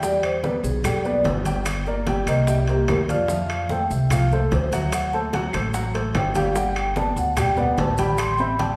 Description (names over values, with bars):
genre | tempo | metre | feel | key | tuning
Afro-Cuban jazz | 147 BPM | 4/4 | straight | G major | A4 = 440 Hz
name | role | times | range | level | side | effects
vibraphone with soft mallets | melody | 0.0-8.8 s | G4 to C6 | -27 LUFS | equal | none
warm baby grand piano | accompaniment | 0.0-8.8 s | F3 to G5 | -29 LUFS | equal | none
upright bass | bass | 0.0-8.7 s | G1 to F2 | -28 LUFS | equal | none
bongos | percussion | 0.0-8.8 s | none | -37 LUFS | equal | none
congas | percussion | 0.0-8.8 s | none | -32 LUFS | equal | none
maracas | percussion | 0.0-8.8 s | none | -42 LUFS | equal | none
claves | percussion | 0.2-8.4 s | none | -38 LUFS | equal | none
timbales | percussion | 0.2-8.8 s | none | -35 LUFS | equal | none
room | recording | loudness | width
wet recital hall reverb, RT60 1.4 s | recorded in a church or concert hall | -22 LUFS | mono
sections
0.0-8.8 A section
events
vibraphone solo 0.0-8.8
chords
0.0 Em7; 1.7 Gm; 2.5 C5; 3.3 F; 4.9 D7; 6.6 Gadd9; 8.2 Am7